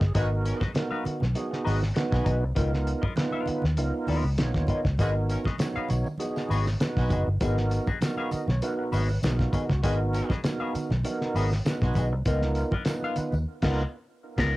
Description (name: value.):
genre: funk.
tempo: 99 BPM.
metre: 4/4.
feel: straight.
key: G# dorian.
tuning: A4 = 437 Hz.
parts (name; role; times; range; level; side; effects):
clean electric guitar; accompaniment; 0.0-14.6 s; B3 to E#5; -33 LUFS; left 4 dB; wah, cassette tape.
tonewheel organ; stabs; 0.0-14.6 s; A#3 to D#5; -31 LUFS; right 2 dB; overdrive, chorus vibrato, slow rotary speaker, cassette tape, analog delay.
vintage muted fingered electric bass; bass; 0.0-14.6 s; F#1 to D#2; -26 LUFS; equal; none.
cloth-damped thuddy drum kit; drums; 0.0-14.6 s; crash cymbal, hi-hat, kick drum, snare drum; -29 LUFS; equal; vintage 12-bit sampler grit, cassette tape.
warm horn section; second line; 0.1-12.1 s; G#3 to D#5; -37 LUFS; equal; cassette tape.
congas; percussion; 0.2-13.5 s; none; -38 LUFS; right 2 dB; none.
tambourine; percussion; 5.0-13.5 s; none; -53 LUFS; left 4 dB; none.
room: moderate studio reverb, RT60 0.5 s.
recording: home recording on cassette.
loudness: -24 LUFS.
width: side -18 dB against mid.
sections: 0.0-14.6 A section.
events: tonewheel organ fill 0.0, 8.0-9.8; band accent 13.5-14.6.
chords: 0.0 G#m7; 2.6 C#13; 5.0 G#m7; 12.3 C#13.